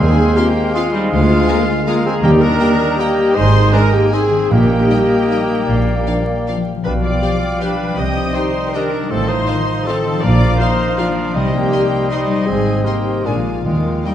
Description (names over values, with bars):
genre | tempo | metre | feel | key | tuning
classical, orchestral ballroom waltz | 158 BPM | 3/4 | uneven beats, rubato | Eb major | A4 = 440 Hz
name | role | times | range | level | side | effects
rich chamber violin section | melody | 0.0-14.1 s | D5 to Eb6 | -28 LUFS | left 7 dB | none
clear clarinet | second line | 0.0-14.1 s | D5 to F5 | -27 LUFS | left 2 dB | none
mellow cor anglais | second line | 0.0-14.1 s | F3 to G4 | -24 LUFS | right 1 dB | none
silver concert flute | second line | 0.0-14.1 s | F5 to C6 | -30 LUFS | equal | none
mellow bassoon | accompaniment | 0.0-14.1 s | F3 to C4 | -24 LUFS | right 1 dB | none
rich symphonic viola section | accompaniment | 0.0-14.1 s | D4 to Eb5 | -20 LUFS | equal | none
concert harp | arpeggios | 0.0-14.1 s | Ab2 to Eb6 | -23 LUFS | left 6 dB | none
rich chamber double bass section | bass | 0.0-14.0 s | Ab1 to Eb2 | -20 LUFS | right 2 dB | none
warm chamber cello section | bass | 0.0-14.0 s | D2 to Eb3 | -22 LUFS | right 2 dB | none
timpani | percussion | 0.0-5.1, 10.2-10.8, 13.6-14.1 s | Bb2 to Eb3 | -21 LUFS | equal | none
rich studio violin section | second line | 0.4-14.1 s | D5 to C6 | -31 LUFS | left 3 dB | none
mellow French horn section | sustained chords | 0.4-14.1 s | Eb3 to Ab4 | -25 LUFS | left 2 dB | none
room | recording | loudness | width
wet scoring stage reverb, RT60 1.6 s | dark, warm production, vinyl crackle | -13 LUFS | side -10 dB against mid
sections
0.0-14.1 A section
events
none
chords
0.0 Fm7/Eb; 1.1 Bb7/D; 2.2 Eb; 3.4 Ab; 4.5 Eb/Bb; 5.7 Bb; 6.8 G7/B; 8.0 Cm; 9.1 F7/A; 10.2 Bb; 11.3 Cm; 12.5 Ab; 13.3 Bb7; 13.6 Eb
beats
0.36 0.75 | 1.12 1.49 1.87 | 2.23 2.60 2.99 | 3.36 3.73 4.12 | 4.50 4.89 5.29 | 5.67 6.06 6.47 | 6.85 7.22 7.61 | 7.98 8.36 8.74 | 9.11 9.48 9.87 | 10.23 10.60 10.98 | 11.35 11.72 12.11 | 12.47 12.85 13.25 | 13.65 14.05